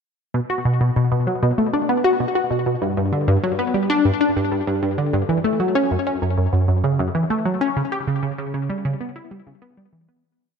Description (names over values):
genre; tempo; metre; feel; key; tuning
ambient; 97 BPM; 4/4; straight; B minor; A4 = 440 Hz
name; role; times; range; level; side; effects
tight sequenced synth; solo; 0.3-10.2 s; F#2 to G4; -18 LUFS; equal; chorus, phaser, ping-pong delay
room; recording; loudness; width
moderate lush hall reverb, RT60 2.8 s; none; -18 LUFS; side -6 dB against mid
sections
0.3-10.2 A section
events
fade-out 6.9-10.2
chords
none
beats
| 0.34 0.96 1.58 2.20 | 2.82 3.44 4.05 4.67 | 5.29 5.91 6.53 7.15 | 7.77 8.38 9.00 9.62